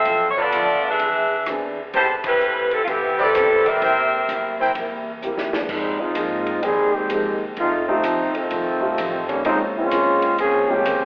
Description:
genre	jazz, big band swing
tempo	128 BPM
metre	4/4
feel	swing 65% on 8ths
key	F minor from 5.7 s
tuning	A4 = 438 Hz
part	clear saxophone section	melody	0.0-4.6 s	E3 to E5	-18 LUFS	equal	none
part	warm baby grand piano	accompaniment	0.0-10.8 s	G3 to G#4	-28 LUFS	equal	none
part	upright bass	bass	0.0-11.1 s	A1 to Bb2	-42 LUFS	equal	none
part	picked steel-string acoustic guitar	accompaniment	0.1-11.1 s	B2 to C5	-30 LUFS	equal	none
part	vintage drum kit	drums	0.1-11.0 s	crash cymbal, hi-hat, kick drum, ride cymbal, rim click, snare drum	-30 LUFS	equal	none
part	clear trumpet section	stabs	0.4-4.7 s	E4 to A5	-23 LUFS	equal	none
part	bright trombone section	second line	5.5-11.1 s	Eb3 to Ab4	-19 LUFS	equal	none
room	wet large studio reverb, RT60 1.4 s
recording	heard from further back in the room, telephone sound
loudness	-18 LUFS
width	side -30 dB against mid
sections	0.0-5.7 A section; 5.7-11.1 B section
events	band accent 2.2; drum fill 5.2-5.7; trombone section solo 5.7-11.1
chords	0.1 Bm7b5; 1.0 E7b13; 1.9 Am9; 3.8 C7; 5.7 Fm11; 7.6 F7; 9.5 Bbm9

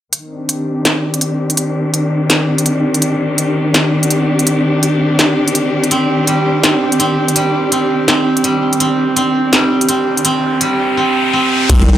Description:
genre	half-time drum and bass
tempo	166 BPM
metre	4/4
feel	swing 58% on 16ths, half-time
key	C minor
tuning	A4 = 438 Hz
part	rich symphonic cello section	sustained chords	0.1-11.0 s	Eb3 to G4	-15 LUFS	left 1 dB	sidechain pumping, low-pass filter
part	industrial drum kit	drums	0.1-11.8 s	crash cymbal, hi-hat, snare drum	-14 LUFS	equal	overdrive, small room reverb
part	koto	arpeggios	5.9-12.0 s	G3 to C4	-14 LUFS	right 2 dB	vintage 12-bit sampler grit, tape echo
part	riser and sub drop	sound effects	9.8-12.0 s	none	-19 LUFS	left 1 dB	none
part	deep soft wobble bass	bass	11.7-12.0 s	C2	-10 LUFS	equal	chorus
part	electronic kick drum	drums	11.7-11.8 s	none	-13 LUFS	equal	distortion, overdrive, small room reverb
room	moderate echo chamber reverb, RT60 1.6 s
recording	dry, gritty hardware recording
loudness	-12 LUFS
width	side -11 dB against mid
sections	0.1-11.7 A section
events	filter sweep on cello section 0.1-11.7; riser 9.8-11.7; impact 11.7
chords	0.1 Cmadd9

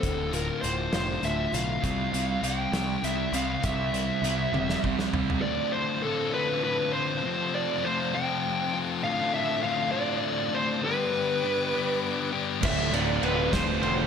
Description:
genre	quiet-loud alternative rock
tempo	67 BPM (dotted quarters)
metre	6/8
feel	straight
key	D dorian from 5.4 s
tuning	A4 = 440 Hz
part	dark smooth lead guitar	melody	0.0-14.1 s	A4 to G5	-29 LUFS	right 1 dB	overdrive, slapback echo
part	picked acoustic archtop guitar	arpeggios	0.0-1.8 s	D2 to F4	-38 LUFS	right 1 dB	none
part	thick fuzz guitar	riff	0.0-14.1 s	D2 to G4	-30 LUFS	left 6 dB	distortion, slapback echo
part	growling picked electric bass	bass	0.0-5.4, 12.6-14.1 s	D1 to C2	-32 LUFS	right 1 dB	overdrive
part	loose indie drum kit	drums	0.0-5.4, 12.6-14.0 s	crash cymbal, hi-hat, kick drum, ride cymbal, snare drum, toms	-32 LUFS	right 1 dB	none
part	crunchy overdriven guitar	riff	1.8-5.4, 12.6-14.1 s	D2 to F4	-31 LUFS	right 10 dB	none
part	bright chamber string section	sustained chords	5.4-14.1 s	F3 to D6	-39 LUFS	right 1 dB	none
room	moderate lush hall reverb, RT60 2.2 s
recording	big arena sound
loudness	-25 LUFS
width	side -7 dB against mid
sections	0.0-5.4 A section; 5.4-14.1 B section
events	drum fill 4.5-5.4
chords	0.0 Dm; 1.8 C; 5.4 Dm7; 7.2 F; 9.0 Dm7; 10.8 G; 12.6 Dm7

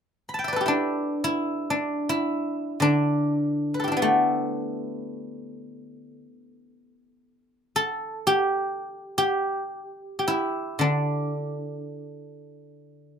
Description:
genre	chinese traditional, Chinese solo plucked strings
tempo	free time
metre	none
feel	none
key	D zhi mode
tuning	A4 = 440 Hz
part	guzheng	solo	0.3-13.2 s	D3 to B5	-24 LUFS	equal	none
room	light reverb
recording	rough home demo mix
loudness	-23 LUFS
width	side -7 dB against mid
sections	0.0-13.2 A section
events	none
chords	none

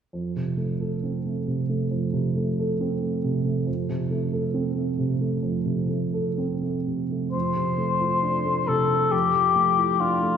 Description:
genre	classical, impressionist duo for cor anglais and grand piano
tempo	67 BPM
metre	4/4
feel	rubato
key	F major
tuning	A4 = 440 Hz
part	dark baby grand piano	accompaniment	0.1-10.4 s	F2 to A4	-24 LUFS	right 2 dB	none
part	dark cor anglais	melody	7.3-10.4 s	F4 to C5	-21 LUFS	left 5 dB	none
room	wet concert hall reverb, RT60 2.1 s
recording	heard from further back in the room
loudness	-22 LUFS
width	side -8 dB against mid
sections	0.1-7.3 A section; 7.3-10.4 B section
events	none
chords	0.1 F; 7.3 F6; 9.1 Dmadd9/F

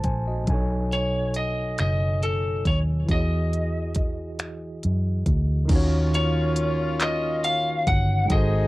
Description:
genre	slow six-eight R&B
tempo	46 BPM (dotted quarters)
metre	6/8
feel	straight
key	Eb phrygian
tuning	A4 = 440 Hz
part	tine electric piano	accompaniment	0.0-8.7 s	B2 to A5	-29 LUFS	right 1 dB	fast stereo tremolo
part	smooth R&B drum kit	drums	0.0-8.5 s	crash cymbal, finger snaps, handclaps, hi-hat, kick drum	-25 LUFS	equal	cassette tape
part	vintage muted fingered electric bass	bass	0.1-8.7 s	F#1 to F#2	-24 LUFS	equal	none
part	lightly driven lead guitar	melody	0.9-8.7 s	A4 to Gb5	-26 LUFS	left 1 dB	none
part	warm horn section	stabs	5.7-8.7 s	Bb3 to Ab4	-31 LUFS	left 4 dB	none
room	little or no reverb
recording	home recording on cassette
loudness	-21 LUFS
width	side -19 dB against mid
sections	0.0-5.7 A section; 5.7-8.7 B section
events	none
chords	0.5 B13; 3.1 Emaj9; 5.7 Ebm9

